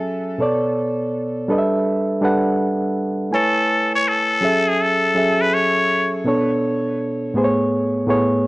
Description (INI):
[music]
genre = hip hop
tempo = 82 BPM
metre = 4/4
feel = swing 66% on 16ths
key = A major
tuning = A4 = 438 Hz
[part]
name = trumpet with straight mute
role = melody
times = 0.0-6.1 s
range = G#4 to C#5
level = -19 LUFS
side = left 1 dB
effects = plate reverb
[part]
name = bright reed electric piano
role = accompaniment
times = 0.0-8.5 s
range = A2 to G#5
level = -18 LUFS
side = right 1 dB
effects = plate reverb
[sound]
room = moderate studio reverb, RT60 0.6 s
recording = cassette tape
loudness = -16 LUFS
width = side -20 dB against mid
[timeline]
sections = 0.0-8.5 A section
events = none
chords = 0.4 Bm9; 1.5 G69; 3.3 Amaj7; 4.4 F#m7; 6.3 Bm9; 7.4 Amaj9